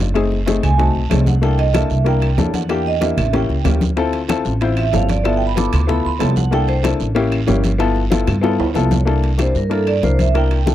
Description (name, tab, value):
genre	Afro-Cuban jazz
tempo	188 BPM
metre	4/4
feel	straight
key	C mixolydian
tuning	A4 = 439 Hz
part	warm upright piano	accompaniment	0.0-10.7 s	A3 to C5	-20 LUFS	left 5 dB	none
part	upright bass	bass	0.0-10.7 s	F#1 to G2	-18 LUFS	right 1 dB	none
part	bongos	percussion	0.0-10.7 s	none	-25 LUFS	left 6 dB	none
part	congas	percussion	0.0-10.7 s	none	-24 LUFS	equal	none
part	guiro	percussion	0.0-10.7 s	none	-36 LUFS	right 13 dB	none
part	timbales	percussion	0.0-10.7 s	none	-29 LUFS	right 10 dB	none
part	claves	percussion	0.2-10.5 s	none	-33 LUFS	left 10 dB	none
part	vibraphone with medium hard mallets	melody	0.6-6.8, 9.4-10.7 s	A4 to D6	-22 LUFS	right 6 dB	slapback echo
room	little or no reverb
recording	dry, close 1970s-style studio recording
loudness	-14 LUFS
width	side -12 dB against mid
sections	0.0-9.1 A section; 9.1-10.7 B section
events	vibraphone solo 0.0-9.1; drum fill 8.3-9.1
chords	0.2 F#dim7; 1.4 C13; 2.7 Em7b5; 3.3 A7b9; 4.0 Dm7; 5.2 G13; 6.5 C13; 7.2 A7b9; 7.8 G13; 9.1 C13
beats	| 0.16 0.47 0.79 1.11 | 1.43 1.75 2.07 2.38 | 2.70 3.02 3.34 3.66 | 3.98 4.29 4.61 4.93 | 5.25 5.57 5.89 6.21 | 6.53 6.84 7.16 7.48 | 7.80 8.12 8.44 8.76 | 9.07 9.39 9.71 10.03 | 10.35 10.67